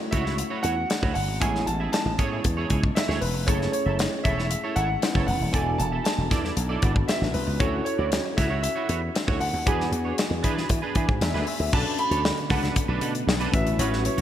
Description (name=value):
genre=polished 1980s jazz-funk pop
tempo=116 BPM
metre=4/4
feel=straight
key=A major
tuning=A4 = 439 Hz
part: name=warm baby grand piano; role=melody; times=0.0-14.2 s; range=B4 to B5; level=-30 LUFS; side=right 2 dB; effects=lush chorus
part: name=barky tine electric piano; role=accompaniment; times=0.0-14.2 s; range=G#3 to G#5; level=-32 LUFS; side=left 3 dB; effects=overdrive, ensemble chorus
part: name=clean electric guitar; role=riff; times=0.0-14.2 s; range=C#4 to E5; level=-32 LUFS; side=right 5 dB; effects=analog chorus
part: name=slap bass with an envelope filter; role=bass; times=0.1-14.2 s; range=D#1 to E3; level=-27 LUFS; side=equal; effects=none
part: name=modern studio drum kit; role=drums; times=0.1-14.2 s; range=crash cymbal, hi-hat, kick drum, snare drum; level=-26 LUFS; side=left 1 dB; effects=none
part: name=string machine, full ensemble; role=sustained chords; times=11.7-14.2 s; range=D3 to C#4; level=-34 LUFS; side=equal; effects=none
room=light reverb, small room ambience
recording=bright 1980s-style digital production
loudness=-22 LUFS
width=side -11 dB against mid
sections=0.0-11.7 A section; 11.7-14.2 B section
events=tine electric piano fill 10.7-11.7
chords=0.0 Dmaj9 (rootless); 1.4 Amaj7; 3.5 F#m7; 5.5 E7sus4; 7.6 Dmaj9; 9.7 E7; 11.7 Bm7; 13.5 A69